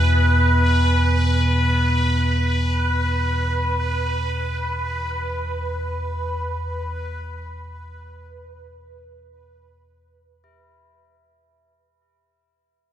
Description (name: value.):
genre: dark ambient drone.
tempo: free time.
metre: none.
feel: none.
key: E major.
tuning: A4 = 439 Hz.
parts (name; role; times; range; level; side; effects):
tubular bells; arpeggios; 0.0-11.7 s; E4 to G#4; -39 LUFS; right 4 dB; tape echo.
deep rumbling drone; drone; 0.0-11.5 s; E2 to B2; -21 LUFS; equal; built-in reverb, lush chorus.
bubbling stepped-filter texture; texture; 0.0-11.4 s; B4; -24 LUFS; right 1 dB; chorus, built-in reverb.
room: wet cathedral reverb, RT60 5.4 s.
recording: in a vast, echoing space.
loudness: -19 LUFS.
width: side -11 dB against mid.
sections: 0.0-11.4 A section.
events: fade-out 0.2-11.4.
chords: 0.0 E5.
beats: free time.